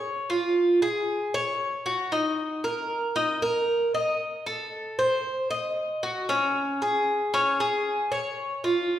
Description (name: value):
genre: latin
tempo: 115 BPM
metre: 4/4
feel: straight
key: unclear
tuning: A4 = 440 Hz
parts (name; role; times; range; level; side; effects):
- Cuban tres; solo; 0.0-9.0 s; Db4 to Eb5; -24 LUFS; equal; none
room: wet recital hall reverb, RT60 1.6 s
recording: heard from further back in the room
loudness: -24 LUFS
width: side -11 dB against mid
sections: 0.0-9.0 A section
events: none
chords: none